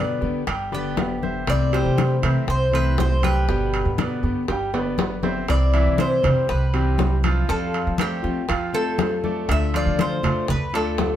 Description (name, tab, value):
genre	latin, Cuban son and guajira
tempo	120 BPM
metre	4/4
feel	straight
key	C major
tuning	A4 = 438 Hz
part	Cuban tres	melody	0.0-11.2 s	G4 to E5	-26 LUFS	left 1 dB	none
part	fingerpicked plugged-in steel-string acoustic guitar	accompaniment	0.0-11.2 s	B2 to G4	-28 LUFS	left 6 dB	none
part	bright grand piano	arpeggios	0.0-11.2 s	E3 to G5	-28 LUFS	right 3 dB	none
part	upright bass	bass	0.0-11.2 s	G1 to F3	-23 LUFS	right 1 dB	none
part	bongos	percussion	0.2-11.2 s	none	-32 LUFS	left 4 dB	none
part	congas	percussion	0.2-11.2 s	none	-27 LUFS	left 4 dB	none
part	timbales	percussion	0.5-11.2 s	none	-30 LUFS	right 5 dB	none
room	moderate studio reverb, RT60 0.7 s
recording	heard from further back in the room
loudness	-19 LUFS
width	side -11 dB against mid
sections	0.0-5.5 A section; 5.5-11.2 A section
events	drum fill 4.5-5.5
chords	0.0 G; 1.5 C6; 3.5 G; 5.5 C; 7.5 Fadd9; 9.5 Dm